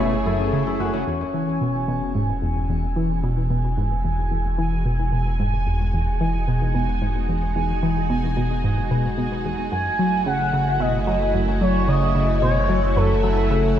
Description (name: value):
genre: ambient, sequencer-driven space music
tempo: 111 BPM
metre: 4/4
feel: straight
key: E major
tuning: A4 = 440 Hz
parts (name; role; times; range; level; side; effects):
- string machine, full ensemble; sustained chords; 0.0-13.8 s; G#3 to G#4; -28 LUFS; right 1 dB; ensemble chorus, shimmer reverb
- concert harp; arpeggios; 0.0-3.8 s; C#4 to E5; -28 LUFS; left 6 dB; auto-pan, shimmer reverb, ping-pong delay
- tight sequenced synth; riff; 0.0-13.8 s; E2 to F#3; -23 LUFS; equal; chorus, ping-pong delay
- warm sub bass; bass; 0.0-13.8 s; E1 to F#1; -25 LUFS; equal; none
- bubbling stepped-filter texture; texture; 0.0-13.8 s; G#5; -31 LUFS; right 4 dB; chorus, built-in reverb, shimmer reverb
- expressive portamento lead; melody; 9.7-13.8 s; A4 to G#5; -22 LUFS; left 1 dB; wide subtle chorus, shimmer reverb, ping-pong delay
room: moderate spring reverb, RT60 2.5 s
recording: echo-heavy mix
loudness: -19 LUFS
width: side -10 dB against mid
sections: 0.0-1.1 A section; 1.1-13.8 B section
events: fade-in on string machine 1.1-13.8; filter sweep on synth arpeggio sound 1.1-13.8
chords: 0.0 F#m7; 1.1 Eadd9; 9.7 F#m7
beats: 0.53 | 1.07 1.61 2.15 2.69 | 3.23 3.77 4.32 4.86 | 5.40 5.94 6.48 7.02 | 7.56 8.10 8.64 9.18 | 9.72 10.26 10.80 11.34 | 11.88 12.42 12.96 13.50